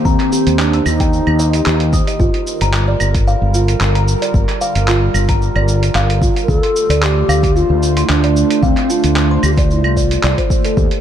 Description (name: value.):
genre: organic downtempo.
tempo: 112 BPM.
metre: 4/4.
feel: swing 54% on 16ths.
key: unclear.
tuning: A4 = 440 Hz.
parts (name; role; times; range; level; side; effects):
mellow hollow low ney; melody; 0.0-1.9, 6.4-10.5 s; C4 to Bb4; -18 LUFS; equal; vintage 12-bit sampler grit, digital delay.
warbly tape-like pad; sustained chords; 0.0-11.0 s; D3 to C5; -22 LUFS; right 1 dB; chorus, built-in reverb, sidechain pumping.
kalimba; arpeggios; 0.1-10.9 s; F4 to E6; -21 LUFS; right 1 dB; digital delay.
fretless electric bass; bass; 0.1-10.9 s; G1 to Eb2; -15 LUFS; equal; none.
dusty soul sampler-style drum kit; drums; 0.1-11.0 s; claves, handclaps, hi-hat, shaker; -22 LUFS; right 1 dB; none.
electronic kick drum; drums; 0.1-10.9 s; none; -16 LUFS; equal; none.
room: light reverb.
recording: dark, warm production.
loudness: -12 LUFS.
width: side -10 dB against mid.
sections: 0.0-11.0 A section.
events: none.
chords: 0.0 Eb; 2.2 Gm7; 6.5 Dm7.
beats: | 0.06 0.59 1.13 1.66 | 2.20 2.74 3.27 3.81 | 4.34 4.88 5.41 5.95 | 6.49 7.02 7.56 8.09 | 8.63 9.16 9.70 10.24 | 10.77.